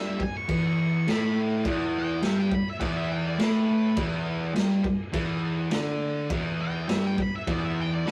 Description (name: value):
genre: garage rock duo or trio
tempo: 103 BPM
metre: 4/4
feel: straight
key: unclear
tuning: A4 = 439 Hz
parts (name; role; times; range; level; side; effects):
- octave-fuzz lead guitar; melody; 0.0-8.1 s; B4 to C#6; -37 LUFS; equal; distortion
- fuzz guitar; riff; 0.0-8.1 s; E2 to D4; -28 LUFS; equal; distortion
- raw garage drum kit; drums; 0.2-8.1 s; crash cymbal, kick drum, snare drum; -34 LUFS; equal; none
room: light reverb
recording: rough rehearsal-room recording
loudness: -27 LUFS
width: mono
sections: 0.0-8.1 A section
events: lead electric guitar solo 0.0-8.1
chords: 0.0 E5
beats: 0.49 1.07 | 1.65 2.23 2.81 3.40 | 3.98 4.56 5.14 5.72 | 6.31 6.89 7.48 8.06